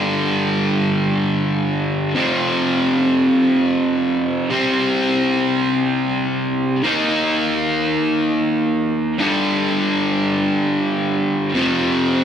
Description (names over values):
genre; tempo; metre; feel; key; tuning
rock; free time; none; none; G minor; A4 = 440 Hz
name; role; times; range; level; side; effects
distorted electric guitar; solo; 0.0-12.2 s; F2 to Eb4; -16 LUFS; equal; distortion
room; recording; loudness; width
wet stone room reverb, RT60 1.3 s; band playing live in one room, lossy compression artefacts; -16 LUFS; side -8 dB against mid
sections
0.0-12.2 A section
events
none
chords
0.0 G5; 2.2 F5; 4.5 C5; 6.9 Eb5; 9.2 G5; 11.5 F5